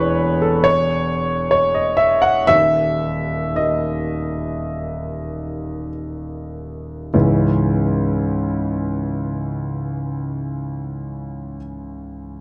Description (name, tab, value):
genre	neoclassical minimalist piano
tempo	47-72 BPM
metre	4/4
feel	rubato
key	C# minor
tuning	A4 = 439 Hz
part	warm grand piano	solo	0.0-12.4 s	D#1 to F#5	-20 LUFS	equal	none
room	moderate studio reverb, RT60 0.8 s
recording	dark, warm production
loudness	-20 LUFS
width	mono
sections	0.0-7.1 A section; 7.1-12.0 B section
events	slowing down 0.0-7.1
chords	0.0 N.C.; 7.1 C#m